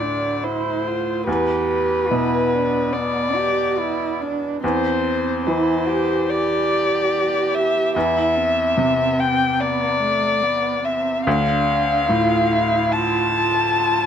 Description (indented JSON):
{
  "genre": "neoclassical piano and strings",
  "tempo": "72 BPM",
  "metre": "4/4",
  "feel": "rubato",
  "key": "A minor",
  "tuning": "A4 = 437 Hz",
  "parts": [
    { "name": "muted violin", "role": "melody", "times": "0.0-14.1 s", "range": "B4 to A5", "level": "-20 LUFS", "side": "left 3 dB", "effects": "none" },
    { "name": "muted cello", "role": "second line", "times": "0.0-14.1 s", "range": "A3 to G4", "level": "-24 LUFS", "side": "right 7 dB", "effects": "none" },
    { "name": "bright upright piano", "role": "accompaniment", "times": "0.0-14.1 s", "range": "D2 to E3", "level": "-23 LUFS", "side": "left 1 dB", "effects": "none" }
  ],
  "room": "light reverb",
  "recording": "close, detailed microphones",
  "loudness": "-17 LUFS",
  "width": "side -8 dB against mid",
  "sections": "0.0-14.1 A section",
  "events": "none",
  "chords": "0.0 D5; 1.3 Em7; 4.6 N.C.; 8.0 Amadd9/E (rootless); 11.3 Dm",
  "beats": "0.44 | 1.27 2.11 2.94 3.79 | 4.63 5.46 6.29 7.12 | 7.95 8.78 9.60 10.43 | 11.26 12.09 12.92 13.76"
}